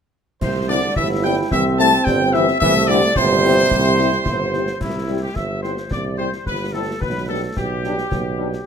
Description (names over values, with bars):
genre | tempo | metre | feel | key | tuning
military-style march for wind band | 109 BPM | 2/4 | straight | C major | A4 = 440 Hz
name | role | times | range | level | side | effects
bright trumpet section | melody | 0.4-8.7 s | E4 to A5 | -22 LUFS | equal | none
warm euphonium | second line | 0.4-4.8 s | C3 to A3 | -24 LUFS | right 4 dB | none
warm woodwind section | second line | 0.4-8.7 s | E4 to A5 | -24 LUFS | left 2 dB | none
warm tuba | bass | 0.4-8.6 s | G1 to C2 | -22 LUFS | right 3 dB | none
concert snare drum, clash cymbals and concert bass drum | drums | 0.4-8.7 s | none | -27 LUFS | left 1 dB | none
mellow French horn section | accompaniment | 0.7-8.5 s | G3 to G4 | -26 LUFS | left 8 dB | none
mellow trombone section | sustained chords | 1.0-8.5 s | G3 to E4 | -25 LUFS | right 1 dB | none
room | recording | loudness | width
moderate large studio reverb, RT60 1.0 s | close, detailed microphones | -16 LUFS | side -7 dB against mid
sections
0.4-4.8 A section; 4.8-8.7 B section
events
none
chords
0.4 C; 7.0 G/B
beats
| 0.41 0.96 | 1.51 2.06 | 2.61 3.16 | 3.71 4.26 | 4.81 5.36 | 5.91 6.46 | 7.02 7.57 | 8.12